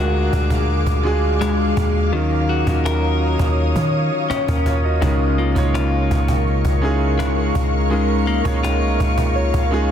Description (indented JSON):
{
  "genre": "contemporary R&B",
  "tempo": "83 BPM",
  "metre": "4/4",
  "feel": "straight",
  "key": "Db major",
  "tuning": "A4 = 440 Hz",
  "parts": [
    { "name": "clear concert grand piano", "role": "accompaniment", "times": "0.0-9.9 s", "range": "Gb3 to Eb5", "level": "-23 LUFS", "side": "right 2 dB", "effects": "none" },
    { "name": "ethereal airy pad", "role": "sustained chords", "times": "0.0-9.9 s", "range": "Ab4 to Eb6", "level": "-24 LUFS", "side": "equal", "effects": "ensemble chorus, built-in reverb" },
    { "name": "direct-recorded clean electric guitar", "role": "arpeggios", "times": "0.0-9.9 s", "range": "Db3 to Bb4", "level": "-24 LUFS", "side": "left 7 dB", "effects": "ping-pong delay" },
    { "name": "soft 808-style bass", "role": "bass", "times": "0.0-9.9 s", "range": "C2 to Eb3", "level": "-19 LUFS", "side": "equal", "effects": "none" },
    { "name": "cajon", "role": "drums", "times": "0.3-9.8 s", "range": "none", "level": "-27 LUFS", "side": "equal", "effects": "none" },
    { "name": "soft synth bell", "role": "texture", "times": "5.4-9.9 s", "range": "F4 to F5", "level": "-32 LUFS", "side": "left 1 dB", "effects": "chorus, phaser, ping-pong delay" }
  ],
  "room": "light reverb, studio reverb",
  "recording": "dense, heavily limited modern master",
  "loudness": "-16 LUFS",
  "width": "side -9 dB against mid",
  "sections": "0.0-9.9 A section",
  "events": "break 0.0-5.0",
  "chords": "0.0 Bb7b13/D; 2.1 Ebm7; 5.0 Db6"
}